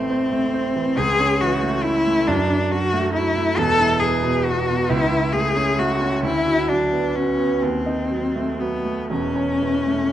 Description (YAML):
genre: classical, romantic duo for cello and grand piano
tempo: 39-46 BPM (dotted quarters)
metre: 6/8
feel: rubato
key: A major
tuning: A4 = 440 Hz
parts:
  - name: rich cello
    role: melody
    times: 0.0-10.1 s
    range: B3 to A4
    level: -20 LUFS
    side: left 2 dB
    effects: none
  - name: clear grand piano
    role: accompaniment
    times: 0.0-10.1 s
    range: E1 to F#4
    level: -22 LUFS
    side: right 3 dB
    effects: none
room: wet recital hall reverb, RT60 1.3 s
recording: dark, warm production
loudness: -18 LUFS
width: side -12 dB against mid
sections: 0.0-10.1 A section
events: none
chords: 0.0 Am; 1.0 A/C#; 2.3 D/F#; 3.6 E5; 4.9 A/C#; 6.2 Bm/D; 7.6 D#dim7; 9.1 A/E